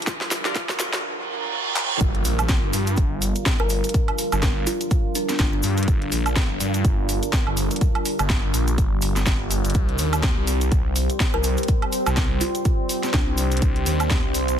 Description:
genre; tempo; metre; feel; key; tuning
bass house; 124 BPM; 4/4; swing 57% on 16ths; G minor; A4 = 436 Hz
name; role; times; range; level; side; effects
deep dark ambient pad; sustained chords; 0.0-14.6 s; G3 to C5; -28 LUFS; right 1 dB; chorus, built-in reverb, vintage 12-bit sampler grit, sidechain pumping
garage drum kit; drums; 0.0-14.6 s; handclaps, hi-hat, snare drum, woodblock; -26 LUFS; right 1 dB; overdrive, small room reverb
riser, reverse cymbal and impact; sound effects; 0.0-3.9 s; none; -28 LUFS; right 4 dB; none
electronic kick drum; drums; 0.1-14.2 s; none; -22 LUFS; equal; small room reverb
cabasa; percussion; 0.1-14.6 s; none; -33 LUFS; left 2 dB; none
band-passed chord stab; stabs; 0.5-0.6 s; G3 to Bb4; -32 LUFS; right 1 dB; none
phased detuned saw bass; bass; 2.0-14.6 s; G1 to G2; -23 LUFS; equal; phaser, overdrive, sidechain pumping
kalimba; melody; 3.6-5.6, 11.3-13.5 s; D4 to Bb4; -31 LUFS; left 2 dB; dub echo
room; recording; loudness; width
digital ambience; dense, heavily limited modern master, high-pass filter; -19 LUFS; side -9 dB against mid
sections
0.0-2.0 A section; 2.0-14.6 B section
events
build-up 0.0-2.0; drum fill 0.0-1.0, 1.8; riser 0.0-2.0; filter sweep on ambient pad 0.0-2.0; reverse cymbal 1.0-2.0; drop 2.0-14.6; impact 2.0-3.9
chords
0.0 Gm7; 9.7 Cm

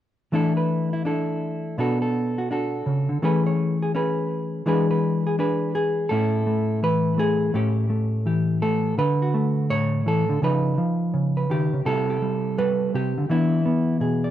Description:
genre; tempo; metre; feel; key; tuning
solo jazz; 167 BPM; 4/4; swing 65% on 8ths; A major; A4 = 437 Hz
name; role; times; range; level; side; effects
hollow-body jazz guitar; solo; 0.3-14.3 s; A2 to D5; -20 LUFS; equal; none
room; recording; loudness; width
little or no reverb; recorded outdoors, with no room sound; -20 LUFS; side -11 dB against mid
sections
0.3-6.1 A section; 6.1-14.3 B section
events
none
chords
0.3 E7sus4; 1.8 Bm7; 3.2 Amaj9/E; 4.7 E7; 6.1 Amaj9; 7.5 A7; 9.0 Dmaj7; 10.4 C#9; 11.9 Cmaj7; 13.3 E7

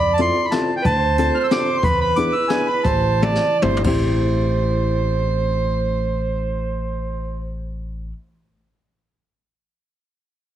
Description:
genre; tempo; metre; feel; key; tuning
musette waltz; 131-186 BPM; 3/4; straight; A minor; A4 = 442 Hz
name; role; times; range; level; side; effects
accordion; melody; 0.0-3.6 s; G5 to F6; -22 LUFS; left 1 dB; none
breathy alto saxophone; second line; 0.0-7.5 s; B4 to D5; -22 LUFS; right 6 dB; none
upright bass; bass; 0.0-8.1 s; G1 to F2; -23 LUFS; equal; none
hollow-body jazz guitar; accompaniment; 0.2-8.1 s; A3 to A4; -24 LUFS; left 4 dB; none
jazz brush drum kit; drums; 0.2-3.9 s; crash cymbal, hi-hat, kick drum, snare drum, toms; -25 LUFS; left 1 dB; none
room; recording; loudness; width
moderate recital hall reverb, RT60 1.5 s; heavily compressed radio sound; -17 LUFS; side -11 dB against mid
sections
0.0-4.1 A section; 4.1-6.8 B section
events
slowing down 1.8-4.1; drum fill 3.2-4.1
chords
0.0 Fmaj7; 0.9 Dm7; 1.8 E7; 2.8 Am7

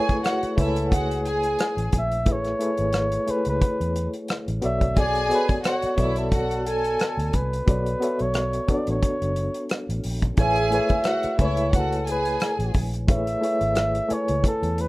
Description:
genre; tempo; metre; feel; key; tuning
lush 1970s-style soul; 89 BPM; 4/4; swing 54% on 16ths; A major; A4 = 444 Hz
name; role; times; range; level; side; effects
warm flugelhorn; melody; 0.0-14.9 s; G#4 to E5; -27 LUFS; equal; none
warm studio violin section; second line; 0.0-12.7 s; E4 to G#5; -26 LUFS; equal; none
barky reed electric piano; accompaniment; 0.0-14.9 s; A3 to G#5; -28 LUFS; left 1 dB; overdrive, fast tremolo
warm soul drum kit; drums; 0.1-14.9 s; hi-hat, kick drum, rim click; -24 LUFS; equal; none
vintage muted fingered electric bass; bass; 0.4-14.9 s; F#1 to E2; -27 LUFS; equal; none
room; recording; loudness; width
little or no reverb; rough home demo mix; -21 LUFS; side -20 dB against mid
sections
0.0-14.9 A section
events
none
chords
0.0 Amaj9; 4.6 Bm9; 10.4 Amaj9

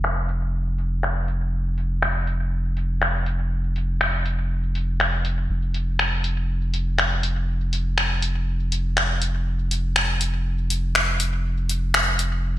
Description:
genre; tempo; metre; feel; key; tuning
dub techno; 121 BPM; 4/4; swing 56% on 16ths; unclear; A4 = 438 Hz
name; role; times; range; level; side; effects
soft dub sub bass; bass; 0.0-12.6 s; F1; -23 LUFS; equal; none
deep house drum kit; drums; 0.0-12.3 s; finger snaps, hi-hat; -23 LUFS; left 1 dB; gated reverb
room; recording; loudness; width
light reverb; bright 1980s-style digital production, low-pass filter; -21 LUFS; side -14 dB against mid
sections
0.0-12.6 A section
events
filter sweep 0.0-12.6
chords
none

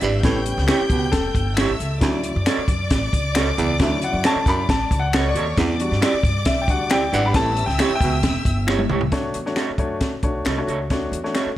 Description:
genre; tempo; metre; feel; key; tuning
uptempo 1960s-style soul; 135 BPM; 4/4; straight; D major; A4 = 443 Hz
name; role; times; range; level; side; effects
warm studio violin section; second line; 0.0-9.1 s; C#5 to G6; -28 LUFS; left 2 dB; tape echo
warm upright piano; accompaniment; 0.0-11.5 s; C#3 to B5; -25 LUFS; left 2 dB; none
warm baritone saxophone; riff; 0.0-8.2 s; D2 to B2; -25 LUFS; right 4 dB; none
electric guitar through a small old amp; stabs; 0.0-11.5 s; E4 to D5; -26 LUFS; right 4 dB; none
upright bass; bass; 0.0-11.5 s; E1 to G2; -24 LUFS; equal; none
compact cocktail drum kit; drums; 0.0-11.5 s; hi-hat, kick drum, snare drum, toms; -22 LUFS; equal; none
finger snaps; percussion; 0.7-11.5 s; none; -29 LUFS; left 4 dB; none
room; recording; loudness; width
light reverb, small room ambience; none; -18 LUFS; side -13 dB against mid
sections
0.0-9.1 A section; 9.1-11.6 B section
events
upright piano solo 0.0-9.1; drum fill 8.7-9.1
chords
0.2 A7; 2.0 Dmaj7; 5.6 Em7; 7.3 A7; 9.1 Dmaj7

